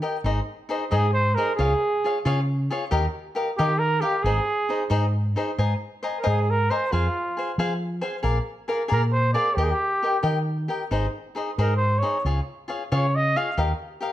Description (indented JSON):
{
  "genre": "mexican folk, mariachi",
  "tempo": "90 BPM (dotted quarters)",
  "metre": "6/8",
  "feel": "straight",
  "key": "Ab major",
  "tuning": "A4 = 439 Hz",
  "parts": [
    { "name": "cavaquinho", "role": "accompaniment", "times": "0.0-14.1 s", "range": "Eb4 to Bb5", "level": "-27 LUFS", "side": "left 2 dB", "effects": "none" },
    { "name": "mellow fretless electric bass", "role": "bass", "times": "0.2-13.7 s", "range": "Ab1 to F3", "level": "-24 LUFS", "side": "equal", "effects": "none" },
    { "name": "warm trumpet", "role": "melody", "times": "0.9-13.6 s", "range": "F4 to F5", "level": "-24 LUFS", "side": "right 2 dB", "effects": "none" }
  ],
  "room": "moderate recital hall reverb, RT60 1.3 s",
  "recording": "none",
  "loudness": "-21 LUFS",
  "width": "side -13 dB against mid",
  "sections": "0.0-5.6 A section; 5.6-14.1 A section",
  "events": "none",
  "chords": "0.3 Ab; 1.6 Db; 2.9 Ebadd9; 4.2 Ab; 5.6 Abadd9; 6.9 Fm; 8.3 Bb7; 9.6 Eb; 10.9 Ab; 12.3 Db; 13.6 Ebadd9"
}